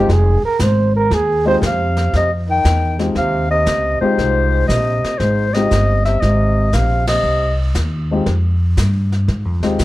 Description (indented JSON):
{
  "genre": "jazz, small-group swing and bop",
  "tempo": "117 BPM",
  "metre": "4/4",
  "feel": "swing 68% on 8ths",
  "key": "F minor",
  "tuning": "A4 = 439 Hz",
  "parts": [
    { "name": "clear trombone", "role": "second line", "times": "0.0-7.6 s", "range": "Ab2 to C5", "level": "-21 LUFS", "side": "right 3 dB", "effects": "none" },
    { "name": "warm baby grand piano", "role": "accompaniment", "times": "0.0-9.8 s", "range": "Ab3 to G4", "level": "-19 LUFS", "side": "left 2 dB", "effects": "none" },
    { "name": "upright bass", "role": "bass", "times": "0.0-9.8 s", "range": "F1 to C3", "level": "-16 LUFS", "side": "equal", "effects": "none" },
    { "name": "jazz brush drum kit", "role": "drums", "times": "0.1-9.8 s", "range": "brushed snare drum, hi-hat, kick drum, ride cymbal, snare drum", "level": "-26 LUFS", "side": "equal", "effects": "none" },
    { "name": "breathy clarinet", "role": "melody", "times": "1.7-7.6 s", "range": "C5 to G5", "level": "-18 LUFS", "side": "left 2 dB", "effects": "plate reverb" }
  ],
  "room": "light reverb",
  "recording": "dark, warm production",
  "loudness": "-14 LUFS",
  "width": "side -16 dB against mid",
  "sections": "0.0-2.1 A section; 2.1-9.8 B section",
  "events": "trombone solo 0.0-2.1; band accent 7.0",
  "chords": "0.1 Fm7",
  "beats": "| 0.10 0.61 1.12 1.63 | 2.14 2.65 3.16 3.67 | 4.18 4.69 5.20 5.71 | 6.22 6.73 7.25 7.76 | 8.27 8.78 9.29 9.80"
}